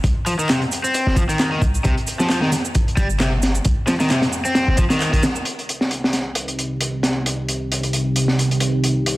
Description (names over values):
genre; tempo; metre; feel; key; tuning
breakbeat, breaks; 133 BPM; 4/4; swing 56% on 16ths; C minor; A4 = 441 Hz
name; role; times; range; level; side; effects
warm 808-style bass; bass; 0.0-4.9 s; G1 to C2; -20 LUFS; equal; none
crunchy breakbeat drum kit; drums; 0.0-9.2 s; hi-hat, kick drum, snare drum; -20 LUFS; equal; high-pass filter on kick, high-pass filter on hats, high-pass filter on snare, high-pass filter on room
electronic shaker and handclaps; drums; 0.0-5.4 s; none; -28 LUFS; right 2 dB; low-pass filter on snare, low-pass filter on perc, low-pass filter on room
crunchy overdriven guitar; riff; 0.3-5.2 s; C3 to C4; -22 LUFS; left 1 dB; tube saturation, tape echo
dark analog pad; sustained chords; 6.0-9.2 s; C3 to G4; -21 LUFS; right 1 dB; chorus, phaser, sidechain pumping
room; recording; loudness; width
light reverb, small room ambience; dense, heavily limited modern master, vinyl crackle; -17 LUFS; side -18 dB against mid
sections
0.0-5.5 A section; 5.5-9.2 B section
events
filter sweep on analog synth pad 5.5-9.2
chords
0.0 Cm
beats
| 0.04 0.49 0.94 1.39 | 1.84 2.30 2.75 3.20 | 3.65 4.10 4.55 5.00 | 5.45 5.91 6.36 6.81 | 7.26 7.71 8.16 8.61 | 9.06